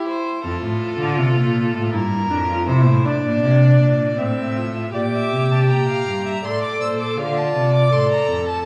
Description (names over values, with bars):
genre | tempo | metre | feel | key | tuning
classical, baroque-style fugue for string quartet | 80 BPM | 3/4 | straight | F major | A4 = 440 Hz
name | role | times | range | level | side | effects
rich violin | second line | 0.0-8.7 s | A4 to A5 | -26 LUFS | equal | none
rich viola | accompaniment | 0.0-8.7 s | C4 to A4 | -26 LUFS | equal | none
clear cello | bass | 0.4-8.7 s | F2 to D3 | -21 LUFS | equal | none
warm violin | melody | 4.9-8.7 s | F5 to E6 | -29 LUFS | equal | none
room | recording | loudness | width
wet recital hall reverb, RT60 1.7 s | heard from further back in the room, studio reverb | -19 LUFS | mono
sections
0.0-4.9 A section; 4.9-8.7 B section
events
none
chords
0.4 F; 1.9 Gm7; 2.7 C; 4.2 F/A; 4.9 Em7b5/Bb; 6.4 Am; 7.2 Dm7